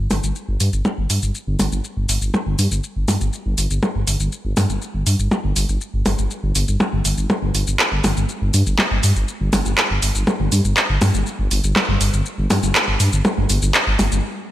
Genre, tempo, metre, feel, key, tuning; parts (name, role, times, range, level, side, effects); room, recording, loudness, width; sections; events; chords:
melodic techno; 121 BPM; 4/4; straight; A4 = 441 Hz
dark detuned saw bass; bass; 0.0-14.2 s; G1 to G2; -19 LUFS; equal
techno drum kit; drums; 0.1-14.2 s; handclaps, hi-hat, percussion blips, shaker; -19 LUFS; equal
light reverb; -17 LUFS; side -13 dB against mid
0.0-14.5 A section
build-up 0.0-14.5; stop 14.2